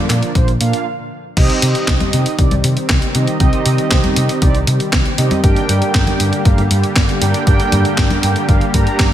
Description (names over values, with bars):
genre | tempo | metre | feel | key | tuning
italo disco | 118 BPM | 4/4 | straight | C minor | A4 = 438 Hz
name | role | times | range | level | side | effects
warm analog pad | sustained chords | 0.0-9.1 s | D3 to G4 | -21 LUFS | equal | chorus
mellow synth brass | stabs | 0.0-9.1 s | Bb3 to Bb5 | -20 LUFS | right 3 dB | chorus, tape echo
hollow-body short-scale picked electric bass | bass | 0.1-9.1 s | G1 to C3 | -17 LUFS | equal | none
clean 12-bit digital drum machine | drums | 0.1-9.1 s | congas, crash cymbal, handclaps, hi-hat, snare drum | -19 LUFS | left 1 dB | gated reverb
electronic kick drum | drums | 0.4-9.1 s | none | -15 LUFS | equal | overdrive
room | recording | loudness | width
light reverb, digital ambience | none | -12 LUFS | side -11 dB against mid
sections
0.0-1.4 A section; 1.4-9.1 B section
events
stop 0.9-1.4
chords
0.0 Bb; 1.4 Cm; 5.4 Gm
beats
0.35 0.86 | 1.37 1.88 2.39 2.90 | 3.40 3.91 4.42 4.93 | 5.44 5.95 6.45 6.96 | 7.47 7.98 8.49 9.00